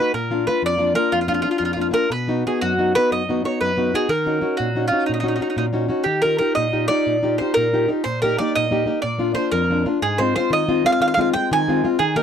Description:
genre	italian folk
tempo	122 BPM (dotted quarters)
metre	6/8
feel	straight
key	Eb minor, Eb major from 6.1 s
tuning	A4 = 438 Hz
part	mandolin	melody	0.0-12.2 s	Eb4 to Ab5	-20 LUFS	right 1 dB	none
part	nylon-string guitar	accompaniment	0.0-12.2 s	F2 to G4	-21 LUFS	left 2 dB	none
room	light reverb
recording	dry, close 1970s-style studio recording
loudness	-18 LUFS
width	side -8 dB against mid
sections	0.0-6.1 A section; 6.1-12.2 B section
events	none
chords	0.1 Bb; 2.1 B; 4.1 Ebm7; 6.1 Ebadd9; 8.0 Eb/Bb; 9.0 Bb; 10.0 Ab6

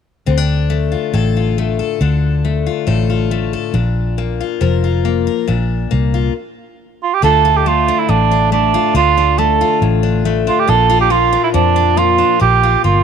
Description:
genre	honky-tonk and classic country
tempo	138 BPM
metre	4/4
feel	straight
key	D minor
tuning	A4 = 440 Hz
part	picked steel-string acoustic guitar	accompaniment	0.3-13.0 s	A2 to Bb4	-18 LUFS	left 11 dB	none
part	vintage muted fingered electric bass	bass	0.3-13.0 s	F1 to F2	-16 LUFS	equal	none
part	mellow cor anglais	melody	7.0-13.0 s	D4 to A4	-13 LUFS	right 10 dB	none
room	light reverb, small room ambience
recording	1960s-style stereo with parts hard left and right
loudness	-12 LUFS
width	side -7 dB against mid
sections	0.3-7.2 A section; 7.2-13.0 B section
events	stop 6.3-7.2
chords	0.3 Dm; 3.7 Bb; 7.2 Dm; 10.7 Bb

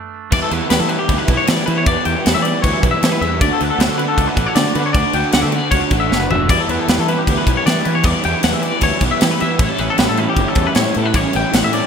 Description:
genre	math rock and midwest emo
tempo	155 BPM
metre	4/4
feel	straight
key	unclear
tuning	A4 = 439 Hz
part	twangy electric guitar	accompaniment	0.0-1.1 s	A3 to D4	-33 LUFS	right 9 dB	wide subtle chorus
part	twangy electric guitar	arpeggios	0.3-11.9 s	G4 to G5	-20 LUFS	left 5 dB	wide subtle chorus, digital delay
part	raw garage guitar	riff	0.3-11.9 s	A2 to F#4	-20 LUFS	right 2 dB	overdrive, ensemble chorus
part	fuzz fingered electric bass	bass	0.3-11.8 s	E1 to E3	-21 LUFS	equal	overdrive
part	crisp fusion drum kit	drums	0.3-11.8 s	crash cymbal, kick drum, snare drum, toms	-18 LUFS	equal	gated reverb
room	light reverb, studio ambience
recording	bright 1980s-style digital production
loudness	-13 LUFS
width	side -7 dB against mid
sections	0.3-11.9 A section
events	stop 0.0-0.3; drum fill 6.1-6.5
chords	0.3 Em7; 3.4 Dmaj13; 6.5 Em7; 9.6 A9

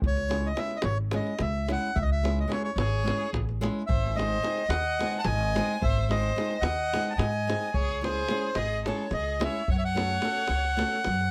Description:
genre	balkan folk, Balkan wedding band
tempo	218 BPM (eighths)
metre	7/8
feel	straight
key	unclear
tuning	A4 = 444 Hz
part	upright bass	bass	0.0-11.3 s	G#1 to G#2	-32 LUFS	equal	none
part	davul	percussion	0.0-11.3 s	none	-34 LUFS	equal	none
part	accordion	melody	0.1-11.3 s	B#4 to A5	-32 LUFS	equal	none
part	flamenco guitar	accompaniment	0.3-11.0 s	G#3 to A4	-35 LUFS	equal	none
part	rich violin	second line	2.8-11.3 s	G#4 to F#5	-37 LUFS	equal	none
room	little or no reverb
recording	close, detailed microphones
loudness	-28 LUFS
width	mono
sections	0.0-11.3 A section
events	none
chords	0.0 C#m; 3.9 G#; 7.8 C#m; 9.7 F#m

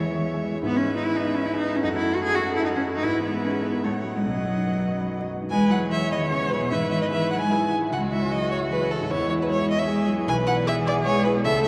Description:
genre	quick classical-period movement for piano quartet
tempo	151 BPM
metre	3/4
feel	straight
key	E major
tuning	A4 = 439 Hz
part	warm violin	melody	0.0-11.7 s	A4 to G#5	-31 LUFS	equal	none
part	rich cello	second line	0.0-11.7 s	B2 to G#4	-28 LUFS	equal	none
part	clear viola	accompaniment	0.0-11.7 s	E4 to D#5	-32 LUFS	equal	none
part	warm concert grand piano	accompaniment	0.0-11.7 s	B1 to D6	-30 LUFS	equal	none
room	wet cathedral reverb, RT60 6.2 s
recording	in a vast, echoing space, vinyl crackle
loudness	-24 LUFS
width	mono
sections	0.0-5.5 A section; 5.5-11.7 B section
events	none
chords	0.0 C#m/E; 0.7 E/G#; 1.8 F#m7; 3.0 E/G#; 3.8 F#m/A; 4.2 B; 5.5 E; 6.7 E/G#; 7.9 C#m; 9.1 C#m/E; 10.3 E7/B

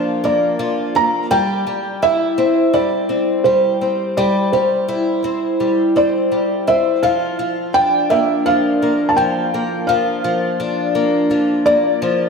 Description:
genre	dream pop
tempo	84 BPM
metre	4/4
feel	straight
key	unclear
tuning	A4 = 440 Hz
part	picked twelve-string acoustic guitar	arpeggios	0.0-12.3 s	F3 to E4	-17 LUFS	left 1 dB	wide subtle chorus, tape echo
part	felt-muted upright piano	melody	0.2-12.3 s	C5 to Bb5	-17 LUFS	right 1 dB	wide subtle chorus, tape echo
room	wet plate reverb, RT60 2.4 s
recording	dreamy mix soaked in reverb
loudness	-14 LUFS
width	side -5 dB against mid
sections	0.0-12.3 A section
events	none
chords	0.0 Bb; 1.3 Cadd9/G; 7.0 Bb

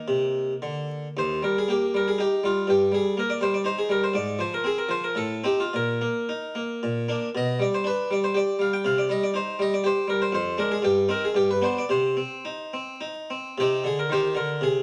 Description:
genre	classical, baroque-style suite movement for harpsichord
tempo	99-125 BPM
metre	3/4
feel	rubato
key	Eb major, C minor from 7.4 s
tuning	A4 = 440 Hz
part	harpsichord	solo	0.0-14.8 s	Eb2 to G5	-25 LUFS	equal	none
room	moderate stone room reverb, RT60 1.0 s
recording	vinyl crackle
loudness	-25 LUFS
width	mono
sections	0.0-1.2 A section; 1.2-13.6 B section; 13.6-14.8 A section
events	none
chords	0.0 Eb5; 1.2 Eb; 2.7 Eb/G; 4.1 Fm/Ab; 5.2 Am7b5; 5.7 Bbsus4; 6.8 Bb; 7.4 G/B; 8.9 Cm; 10.3 Ddim/F; 10.8 Cm/G; 11.3 G; 11.9 Cm

